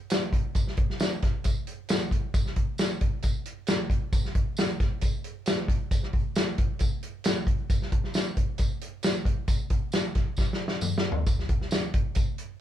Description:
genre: soul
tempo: 134 BPM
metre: 4/4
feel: straight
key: none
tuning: none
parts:
  - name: natural country drum kit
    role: drums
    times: 0.1-12.5 s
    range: hi-hat, kick drum, snare drum, toms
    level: -25 LUFS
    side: equal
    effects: none
  - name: tambourine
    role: percussion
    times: 0.1-12.3 s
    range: none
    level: -39 LUFS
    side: right 2 dB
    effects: none
room: moderate studio ambience, RT60 0.5 s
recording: band playing live in one room, cassette tape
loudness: -25 LUFS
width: side -11 dB against mid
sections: 0.0-11.3 A section; 11.3-12.6 B section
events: drum fill 10.4-11.3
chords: none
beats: 0.11 | 0.55 1.00 1.45 1.89 | 2.34 2.79 3.23 3.68 | 4.12 4.57 5.02 5.47 | 5.91 6.36 6.80 7.25 | 7.70 8.14 8.59 9.04 | 9.48 9.93 10.38 10.82 | 11.27 11.71 12.16

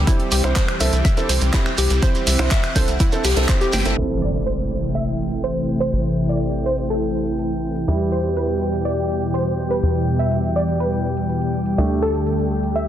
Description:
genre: progressive house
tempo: 123 BPM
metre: 4/4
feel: straight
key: unclear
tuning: A4 = 440 Hz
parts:
  - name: supersaw pad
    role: sustained chords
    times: 0.0-12.9 s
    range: B2 to F#5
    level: -23 LUFS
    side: left 1 dB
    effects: phaser, sidechain pumping, low-pass filter
  - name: tight sequencer bass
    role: bass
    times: 0.0-12.9 s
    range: G1 to E2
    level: -23 LUFS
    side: equal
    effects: sidechain pumping
  - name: glassy wavetable pluck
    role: arpeggios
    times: 0.1-3.8 s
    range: E4 to G5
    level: -26 LUFS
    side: left 2 dB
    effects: chorus, sidechain pumping, tape echo
  - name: felt-muted upright piano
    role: stabs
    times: 0.1-12.9 s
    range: G3 to C5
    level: -26 LUFS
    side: right 3 dB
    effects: sidechain pumping, low-pass filter, tape echo
  - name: electronic kick drum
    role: drums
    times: 0.1-3.6 s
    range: none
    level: -18 LUFS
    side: equal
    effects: none
  - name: house drum kit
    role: drums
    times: 0.1-12.9 s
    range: finger snaps, handclaps, hi-hat, snare drum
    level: -26 LUFS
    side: right 1 dB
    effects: soft clipping on snare, low-pass filter on snare, low-pass filter on hats, low-pass filter on room
  - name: jazz brush drum kit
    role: drums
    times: 0.1-4.0 s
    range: hi-hat, snare drum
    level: -32 LUFS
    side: right 2 dB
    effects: none
  - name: shekere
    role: percussion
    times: 0.1-4.0 s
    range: none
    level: -31 LUFS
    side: right 4 dB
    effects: none
  - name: impact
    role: sound effects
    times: 4.0-5.9 s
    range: none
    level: -28 LUFS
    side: equal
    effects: none
  - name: drifting glass-harmonics texture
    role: texture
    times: 4.9-12.9 s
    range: G5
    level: -35 LUFS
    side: right 1 dB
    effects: chorus, built-in reverb, sidechain pumping
  - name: wide unison pluck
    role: melody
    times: 4.2-12.9 s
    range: A4 to E5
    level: -25 LUFS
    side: right 1 dB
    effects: sidechain pumping, tape echo
room: light reverb, small room reverb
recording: dense, heavily limited modern master, low-pass filter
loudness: -18 LUFS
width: side -11 dB against mid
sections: 0.0-4.0 A section; 4.0-12.9 B section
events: drum fill 3.7; band accent 3.7; impact 4.0-5.9; filter sweep on supersaw synth 4.0-12.9; filter sweep 4.0-12.9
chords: 0.1 C; 4.0 Am; 7.9 Em; 11.8 Dsus4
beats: | 0.07 0.56 1.05 1.54 | 2.02 2.51 3.00 3.49 | 3.98 4.46 4.95 5.44 | 5.93 6.42 6.90 7.39 | 7.88 8.37 8.86 9.34 | 9.83 10.32 10.81 11.29 | 11.78 12.27 12.76

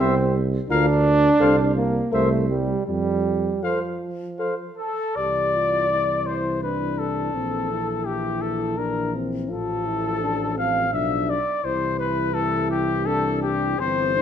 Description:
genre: classical, brass quintet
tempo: 83 BPM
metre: 3/4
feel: rubato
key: F major, C major from 5.2 s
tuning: A4 = 440 Hz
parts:
  - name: warm trumpet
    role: melody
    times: 0.0-14.2 s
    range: G4 to F5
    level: -26 LUFS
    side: left 7 dB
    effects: none
  - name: mellow flugelhorn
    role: second line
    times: 0.0-14.2 s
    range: G4 to F5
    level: -28 LUFS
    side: right 3 dB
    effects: none
  - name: dark French horn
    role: accompaniment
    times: 0.0-14.2 s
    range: C4 to Bb4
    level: -28 LUFS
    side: left 5 dB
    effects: none
  - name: dark trombone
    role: accompaniment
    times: 0.0-14.2 s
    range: E3 to D4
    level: -26 LUFS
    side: right 2 dB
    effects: none
  - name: mellow tuba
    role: bass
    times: 0.0-14.2 s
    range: G1 to F2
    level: -26 LUFS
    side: right 2 dB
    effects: none
room: moderate recital hall reverb, RT60 1.3 s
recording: none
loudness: -20 LUFS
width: side -9 dB against mid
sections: 0.0-5.2 A section; 5.2-14.2 B section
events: none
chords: 0.0 C; 0.7 Bb/D; 1.4 F/C; 2.1 C7; 2.9 F; 5.2 C; 7.3 Bbmaj9#11; 9.5 F/A; 10.9 Dm69/B; 11.6 C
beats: | 0.70 1.40 2.13 | 2.88 3.64 4.39 | 5.17 5.91 6.63 | 7.34 8.05 8.78 | 9.50 10.22 10.94 | 11.65 12.35 13.06 | 13.79

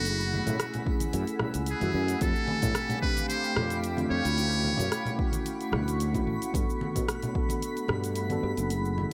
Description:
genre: sunset chillout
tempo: 111 BPM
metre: 4/4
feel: swing 53% on 16ths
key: unclear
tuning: A4 = 441 Hz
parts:
  - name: trumpet with metal mute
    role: melody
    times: 0.0-5.2 s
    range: F#4 to C#5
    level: -34 LUFS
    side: equal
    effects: tape echo
  - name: mellow tine electric piano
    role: accompaniment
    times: 0.0-9.1 s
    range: A3 to A4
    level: -35 LUFS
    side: equal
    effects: tape echo
  - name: shimmering ambient pad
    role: sustained chords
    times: 0.0-9.1 s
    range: A3 to E6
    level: -41 LUFS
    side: equal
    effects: chorus, built-in reverb, phaser
  - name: sustaining fretless electric bass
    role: bass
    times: 0.0-9.0 s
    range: F#1 to B2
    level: -33 LUFS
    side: equal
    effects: lush chorus
  - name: twinkling granular texture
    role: texture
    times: 0.0-9.1 s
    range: B5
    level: -45 LUFS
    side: equal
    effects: built-in reverb
  - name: deep house drum kit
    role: drums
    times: 0.1-8.9 s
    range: cabasa, hi-hat, rim click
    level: -38 LUFS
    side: equal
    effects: studio reverb
  - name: congas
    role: percussion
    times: 0.3-9.1 s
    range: none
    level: -38 LUFS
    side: equal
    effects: none
  - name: electronic kick drum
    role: drums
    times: 0.9-7.5 s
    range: none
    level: -33 LUFS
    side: equal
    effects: studio reverb
room: light reverb, digital ambience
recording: none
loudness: -29 LUFS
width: mono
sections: 0.0-9.1 A section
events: none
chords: 0.1 F#m9; 2.2 F69; 4.4 Dmaj7; 6.5 Gmaj9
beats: | 0.05 0.59 1.13 1.67 | 2.21 2.75 3.30 3.84 | 4.38 4.92 5.46 6.00 | 6.54 7.08 7.62 8.16 | 8.70

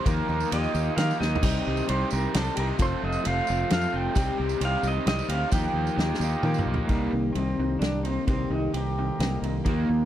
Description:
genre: folk rock and heartland rock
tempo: 132 BPM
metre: 3/4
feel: straight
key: C dorian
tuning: A4 = 443 Hz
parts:
  - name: pedal steel guitar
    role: melody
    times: 0.0-10.1 s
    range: Bb3 to G5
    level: -29 LUFS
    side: right 2 dB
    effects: none
  - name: picked plugged-in old ladder-braced acoustic guitar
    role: accompaniment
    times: 0.0-10.1 s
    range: C3 to A4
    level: -32 LUFS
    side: left 6 dB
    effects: none
  - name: mellow accordion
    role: sustained chords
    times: 0.0-10.1 s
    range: G3 to Eb5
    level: -40 LUFS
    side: right 4 dB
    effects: none
  - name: raw garage guitar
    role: riff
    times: 0.0-10.1 s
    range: F2 to G4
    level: -33 LUFS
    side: right 2 dB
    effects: overdrive
  - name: fingered electric bass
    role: bass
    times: 0.1-10.1 s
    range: F1 to Eb3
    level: -28 LUFS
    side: equal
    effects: none
  - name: natural country drum kit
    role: drums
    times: 0.1-9.8 s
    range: crash cymbal, kick drum, ride cymbal, snare drum, toms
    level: -29 LUFS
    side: equal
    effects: none
  - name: tambourine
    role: percussion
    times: 0.1-6.7 s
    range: none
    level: -44 LUFS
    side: right 16 dB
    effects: none
room: little or no reverb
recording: dry, close 1970s-style studio recording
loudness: -23 LUFS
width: side -11 dB against mid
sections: 0.0-6.9 A section; 6.9-10.1 B section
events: drum fill 1.2, 6.0-6.9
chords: 0.1 Ebadd9; 1.4 Cm; 2.8 F; 4.2 Cm; 5.5 Ebadd9; 6.9 Cm7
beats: | 0.05 0.51 0.96 | 1.42 1.88 2.33 | 2.79 3.24 3.70 | 4.16 4.61 5.07 | 5.52 5.98 6.44 | 6.89 7.35 7.81 | 8.27 8.73 9.19 | 9.65

